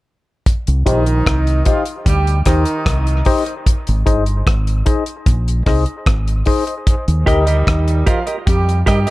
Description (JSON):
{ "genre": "dub reggae", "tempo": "75 BPM", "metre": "4/4", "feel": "straight", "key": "C minor", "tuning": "A4 = 443 Hz", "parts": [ { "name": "damped 70s drum kit", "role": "drums", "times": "0.5-9.1 s", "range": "hi-hat, kick drum, rim click", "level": "-16 LUFS", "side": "equal", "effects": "none" }, { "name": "deep dub fingered electric bass", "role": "bass", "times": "0.7-9.0 s", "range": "G1 to G2", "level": "-16 LUFS", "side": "equal", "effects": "none" }, { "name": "mellow horn section", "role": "second line", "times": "0.9-9.1 s", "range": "Eb3 to G4", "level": "-21 LUFS", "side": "right 3 dB", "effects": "dub echo" }, { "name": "clean electric guitar", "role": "accompaniment", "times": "0.9-1.0, 7.3-9.1 s", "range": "G4 to Eb5", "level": "-22 LUFS", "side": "right 3 dB", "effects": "low-pass filter, dub echo" }, { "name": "percussive organ stab", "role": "stabs", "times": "0.9-7.4 s", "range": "Eb4 to Eb5", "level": "-21 LUFS", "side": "left 5 dB", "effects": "chorus, low-pass filter, dub echo" } ], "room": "studio reverb", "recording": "none", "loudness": "-13 LUFS", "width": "side -18 dB against mid", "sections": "0.5-9.1 A section", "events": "filter sweep 0.5-9.1", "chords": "0.5 Cm; 3.7 Ab; 6.9 Eb" }